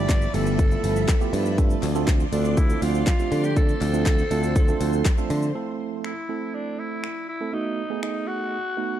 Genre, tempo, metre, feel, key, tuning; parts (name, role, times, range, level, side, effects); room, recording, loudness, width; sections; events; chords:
dance-pop; 121 BPM; 4/4; straight; A minor; A4 = 440 Hz
growling alto saxophone; melody; 0.0-9.0 s; D4 to D5; -30 LUFS; left 1 dB; ping-pong delay
tine electric piano; accompaniment; 0.0-9.0 s; A3 to A4; -29 LUFS; right 8 dB; auto-pan, sidechain pumping
string machine, full ensemble; sustained chords; 0.0-5.5 s; F3 to C6; -32 LUFS; equal; ensemble chorus, sidechain pumping
picked electric bass; bass; 0.0-5.5 s; G1 to D3; -24 LUFS; equal; sidechain pumping
pop drum kit; drums; 0.1-8.1 s; finger snaps, handclaps, hi-hat, kick drum, shaker, snare drum; -22 LUFS; equal
group handclap; percussion; 0.1-5.2 s; -42 LUFS; left 8 dB
little or no reverb; dark, warm production; -21 LUFS; side -11 dB against mid
0.0-5.5 A section; 5.5-9.0 B section
0.0 G13; 1.6 Dm7; 5.5 Am; 7.5 B7